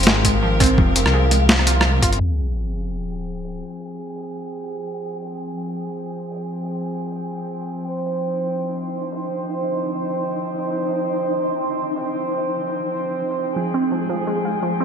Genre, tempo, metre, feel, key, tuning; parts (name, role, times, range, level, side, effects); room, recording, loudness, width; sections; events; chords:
half-time drum and bass; 169 BPM; 4/4; swing 57% on 16ths, half-time; F minor; A4 = 440 Hz
rich chamber string section; sustained chords; 0.0-14.8 s; F3 to G5; -25 LUFS; right 1 dB; sidechain pumping
warbly dusty pluck; arpeggios; 0.0-2.2, 13.6-14.8 s; F3 to F4; -22 LUFS; right 2 dB; chorus, ping-pong delay
dark detuned saw bass; bass; 0.0-2.2 s; F1 to C2; -19 LUFS; equal
boom bap sampler-style drum kit; drums; 0.0-14.8 s; hi-hat, rim click, snare drum; -18 LUFS; left 1 dB; overdrive, low-pass filter on hats, low-pass filter on snare, low-pass filter on room
flickering grainy texture; texture; 0.0-14.8 s; Ab3 to G5; -29 LUFS; equal; built-in reverb, wide subtle chorus
electronic kick drum; drums; 0.2-2.1 s; -19 LUFS; equal; overdrive
sub drop; sound effects; 2.2-3.6 s; -24 LUFS; equal
wet lush hall reverb, RT60 1.6 s, digital ambience; bright 1980s-style digital production, low-pass filter; -20 LUFS; side -7 dB against mid
0.0-2.2 A section; 2.2-14.8 B section
impact 2.2-3.6; filter sweep 2.2-14.8
0.0 Fmadd9